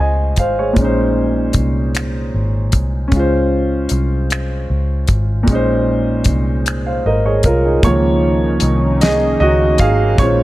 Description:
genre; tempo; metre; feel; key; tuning
slow six-eight R&B; 51 BPM (dotted quarters); 6/8; straight; Db major; A4 = 439 Hz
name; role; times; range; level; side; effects
warm grand piano; accompaniment; 0.0-10.4 s; Bb2 to Ab5; -16 LUFS; right 1 dB; none
vintage muted fingered electric bass; bass; 0.0-10.4 s; Ab1 to Db2; -17 LUFS; equal; none
damped 70s drum kit; drums; 0.4-10.4 s; finger snaps, hi-hat, kick drum, snare drum; -16 LUFS; equal; none
warm analog pad; sustained chords; 7.8-10.4 s; Bb2 to F4; -22 LUFS; equal; chorus
room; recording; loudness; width
small room ambience; none; -13 LUFS; side -16 dB against mid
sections
0.0-7.8 A section; 7.8-10.4 B section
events
grand piano solo 7.8-10.4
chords
0.0 Dbmaj7; 0.8 Bbm11; 3.1 Dbmaj7; 5.5 Bbm11; 7.8 Db69

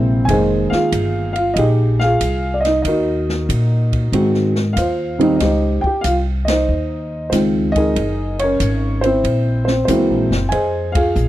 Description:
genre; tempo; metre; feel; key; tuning
jazz piano trio; 94 BPM; 4/4; swing 68% on 8ths; unclear; A4 = 440 Hz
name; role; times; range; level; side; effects
dark baby grand piano; melody; 0.0-11.3 s; C3 to Ab5; -17 LUFS; equal; none
upright bass; bass; 0.0-11.3 s; F1 to Bb2; -19 LUFS; equal; none
open jazz drum kit; drums; 0.3-11.3 s; hi-hat, kick drum, ride cymbal, snare drum; -26 LUFS; equal; none
room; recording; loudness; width
studio reverb; dry, close 1970s-style studio recording; -15 LUFS; side -14 dB against mid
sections
0.0-11.3 A section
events
band accent 6.4-6.7, 10.8-11.2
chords
0.3 Fm11; 2.8 Ebm; 4.1 Ab7; 5.4 Dbmaj9#11; 8.0 Gb9; 10.5 Fm11

